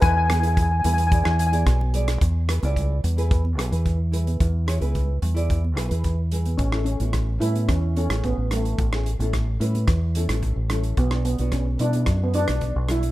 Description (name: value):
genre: calypso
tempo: 110 BPM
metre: 4/4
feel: straight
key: A major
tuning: A4 = 440 Hz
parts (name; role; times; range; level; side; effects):
- steel pan; melody; 0.0-1.5, 6.6-13.1 s; A3 to G#5; -26 LUFS; equal; digital delay
- nylon-string guitar; accompaniment; 0.0-13.1 s; B3 to D5; -33 LUFS; equal; none
- deep dub fingered electric bass; bass; 0.0-13.1 s; A1 to B2; -22 LUFS; equal; none
- loose indie drum kit; drums; 0.0-13.1 s; hi-hat, kick drum, rim click; -26 LUFS; equal; none
- congas; percussion; 0.3-13.0 s; none; -37 LUFS; right 4 dB; none
room: studio reverb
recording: rough home demo mix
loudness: -20 LUFS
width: side -16 dB against mid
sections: 0.0-2.2 A section; 2.2-6.6 B section; 6.6-13.1 C section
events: none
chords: 0.0 E; 6.6 A; 11.0 Bm